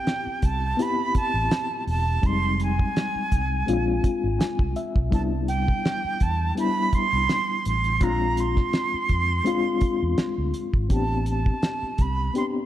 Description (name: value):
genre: lush 1970s-style soul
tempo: 83 BPM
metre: 4/4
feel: swing 54% on 16ths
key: A minor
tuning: A4 = 440 Hz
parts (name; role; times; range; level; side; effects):
- breathy bright silver concert flute; melody; 0.0-12.4 s; G5 to C6; -27 LUFS; right 3 dB; none
- reed electric piano; accompaniment; 0.0-12.7 s; G3 to Ab5; -27 LUFS; left 3 dB; fast tremolo
- cloth-damped thuddy drum kit; drums; 0.1-12.5 s; hi-hat, kick drum, snare drum; -25 LUFS; equal; none
- fingered electric bass; bass; 0.3-12.3 s; E1 to F2; -26 LUFS; equal; none
room: moderate concert hall reverb, RT60 2.2 s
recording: none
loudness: -21 LUFS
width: side -12 dB against mid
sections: 0.0-12.7 A section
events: reed electric piano fill 4.0-5.1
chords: 0.0 Am9; 2.2 Fm7; 3.7 Bb9; 5.1 Cmaj9; 8.0 Bb9; 10.9 Am11